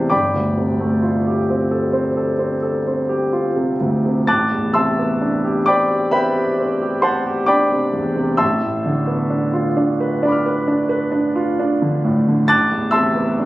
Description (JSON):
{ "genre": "classical, impressionist solo piano", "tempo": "44 BPM (dotted quarters)", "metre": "9/8", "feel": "rubato", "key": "A minor", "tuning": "A4 = 440 Hz", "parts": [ { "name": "clear concert grand piano", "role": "solo", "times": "0.0-13.5 s", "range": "G1 to A6", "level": "-16 LUFS", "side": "equal", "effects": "none" } ], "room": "light reverb", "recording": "recorded on a phone in the room, club reverb", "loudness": "-16 LUFS", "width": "side -17 dB against mid", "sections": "0.0-13.5 A section", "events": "none", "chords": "0.1 G9sus4; 4.3 Am11; 8.4 Dm6/A; 12.5 Amadd9", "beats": "| 0.11 1.49 2.87 | 4.28 5.67 7.04 | 8.41 9.79 11.14 | 12.48" }